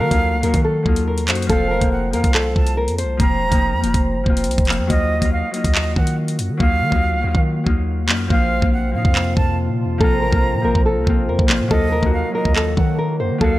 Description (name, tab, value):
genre	hip hop, drill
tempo	141 BPM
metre	4/4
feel	half-time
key	unclear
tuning	A4 = 440 Hz
part	nylon-string guitar	melody	0.0-3.2, 10.0-13.6 s	A4 to C5	-23 LUFS	left 1 dB	low-pass filter
part	silver concert flute	second line	0.0-13.6 s	Eb5 to Bb5	-25 LUFS	right 3 dB	tape echo
part	Celtic harp	accompaniment	0.0-13.6 s	F3 to Gb4	-23 LUFS	left 3 dB	low-pass filter
part	long sustained 808-style bass	bass	0.0-13.6 s	Eb1 to Eb3	-22 LUFS	equal	none
part	drill drum kit	drums	0.1-13.5 s	handclaps, hi-hat, kick drum	-18 LUFS	equal	vintage 12-bit sampler grit
part	warbly tape-like pad	sustained chords	8.9-13.6 s	C3 to F4	-27 LUFS	right 1 dB	chorus, built-in reverb
room	little or no reverb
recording	none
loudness	-16 LUFS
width	side -16 dB against mid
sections	0.0-13.6 A section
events	hi-hats muted 6.6-8.3, 8.3-13.6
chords	0.0 Ebmadd9; 1.5 Fsus4; 4.9 Ebmadd9; 8.3 Bbsus2; 11.7 Ebmadd9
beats	0.22 0.65 1.07 | 1.50 1.92 2.35 2.77 | 3.20 3.62 4.05 4.47 | 4.90 5.33 5.75 6.18 | 6.60 7.03 7.45 7.88 | 8.30 8.73 9.15 9.58 | 10.01 10.43 10.86 11.28 | 11.71 12.13 12.56 12.98 | 13.41